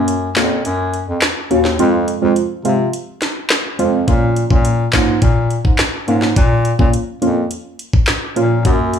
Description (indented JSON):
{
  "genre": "dancehall",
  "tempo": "105 BPM",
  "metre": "4/4",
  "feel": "straight",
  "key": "Bb minor",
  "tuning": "A4 = 440 Hz",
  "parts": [
    { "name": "deep mellow chord stab", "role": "accompaniment", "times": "0.0-9.0 s", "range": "Ab3 to Gb4", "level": "-17 LUFS", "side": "right 1 dB", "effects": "chorus" },
    { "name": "warm bass clarinet", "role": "bass", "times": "0.0-9.0 s", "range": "Eb2 to C3", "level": "-17 LUFS", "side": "left 1 dB", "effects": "none" },
    { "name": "island pop drum kit", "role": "drums", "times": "0.1-9.0 s", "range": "handclaps, hi-hat, kick drum, rim click, snare drum", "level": "-16 LUFS", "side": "equal", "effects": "none" }
  ],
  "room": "little or no reverb",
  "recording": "studio reverb",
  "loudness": "-13 LUFS",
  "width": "side -8 dB against mid",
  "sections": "0.0-9.0 A section",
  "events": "break 0.0-4.1",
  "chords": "0.0 Gb; 1.8 Fm; 4.1 Bbm"
}